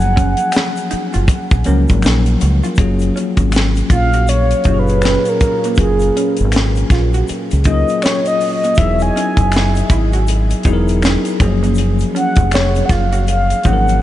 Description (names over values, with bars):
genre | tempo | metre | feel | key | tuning
R&B, neo-soul | 80 BPM | 4/4 | swing 61% on 16ths | F# major | A4 = 441 Hz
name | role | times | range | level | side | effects
mellow horn-like synth lead | melody | 0.0-14.0 s | G#4 to G#5 | -19 LUFS | equal | chorus
bell-like tine electric piano | accompaniment | 0.0-14.0 s | A#2 to A#4 | -19 LUFS | left 3 dB | medium stereo tremolo
deep dub fingered electric bass | bass | 0.0-14.0 s | E1 to C#2 | -15 LUFS | equal | none
tight funk drum kit | drums | 0.0-14.0 s | hi-hat, kick drum, snare drum | -18 LUFS | equal | none
egg shaker and finger snaps | percussion | 0.0-14.0 s | none | -32 LUFS | left 3 dB | none
electric guitar through a small old amp | second line | 0.2-13.8 s | A#3 to F#4 | -26 LUFS | right 6 dB | phaser
room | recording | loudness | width
light reverb, studio reverb | nothing above 11.0 kHz | -12 LUFS | side -13 dB against mid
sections
0.0-2.8 A section; 2.8-14.0 B section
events
soft synth lead solo 2.8-14.0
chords
0.0 F#maj9; 8.8 Emaj9; 11.4 F#maj9